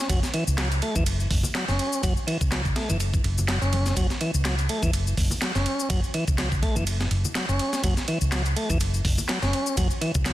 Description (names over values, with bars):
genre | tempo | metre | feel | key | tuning
breakbeat, breaks | 124 BPM | 4/4 | swing 56% on 16ths | F# minor | A4 = 436 Hz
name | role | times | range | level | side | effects
tonewheel organ | riff | 0.0-10.3 s | E3 to C#4 | -28 LUFS | equal | overdrive, digital delay
hollow-body short-scale fingered electric bass | bass | 0.1-10.3 s | F#1 to C#2 | -25 LUFS | equal | tube saturation
breakbeat sampler-style drum kit | drums | 0.1-10.3 s | hi-hat, kick drum, ride cymbal, snare drum | -27 LUFS | equal | small room ambience
electronic shaker and handclaps | drums | 0.1-10.3 s | none | -32 LUFS | left 2 dB | overdrive, small room ambience
congas | percussion | 1.4-10.2 s | none | -35 LUFS | left 1 dB | none
room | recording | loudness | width
digital ambience | dense, heavily limited modern master | -22 LUFS | side -15 dB against mid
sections
0.0-10.3 A section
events
none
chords
0.0 F#m7